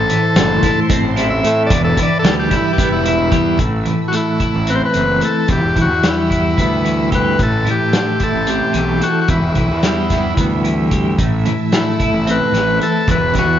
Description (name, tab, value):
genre	psychedelic rock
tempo	222 BPM (eighths)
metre	7/8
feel	straight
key	A minor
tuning	A4 = 440 Hz
part	overdriven combo organ	melody	0.0-13.6 s	E4 to E5	-18 LUFS	left 2 dB	tape echo
part	clear symphonic string section	sustained chords	0.0-13.6 s	B4 to E6	-29 LUFS	right 12 dB	none
part	twelve-string electric guitar	riff	0.0-13.6 s	A2 to E4	-18 LUFS	equal	tremolo, double-tracked left and right
part	fuzz fingered electric bass	bass	0.0-13.6 s	E1 to A2	-20 LUFS	equal	overdrive
part	vintage drum kit	drums	0.1-13.5 s	hi-hat, kick drum, snare drum	-19 LUFS	equal	none
part	congas	percussion	0.4-13.5 s	none	-30 LUFS	right 9 dB	none
room	moderate spring reverb, RT60 2.2 s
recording	1960s-style stereo, nothing above 7.5 kHz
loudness	-13 LUFS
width	side -10 dB against mid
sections	0.0-3.6 A section; 3.6-13.6 B section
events	transistor combo organ solo 0.0-3.6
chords	0.0 Am; 1.7 Em; 3.6 Am; 5.5 Em; 7.4 Am; 9.3 Em; 11.2 Am; 13.1 Em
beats	0.10 0.37 0.64 0.91 1.17 1.44 | 1.71 1.98 2.25 2.52 2.79 3.06 3.33 | 3.60 3.87 4.14 4.42 4.68 4.96 5.23 | 5.50 5.77 6.04 6.31 6.58 6.85 7.13 | 7.40 7.67 7.94 8.21 8.48 8.75 9.02 | 9.29 9.56 9.84 10.11 10.38 10.65 10.92 | 11.19 11.46 11.73 12.00 12.27 12.54 12.81 | 13.08 13.35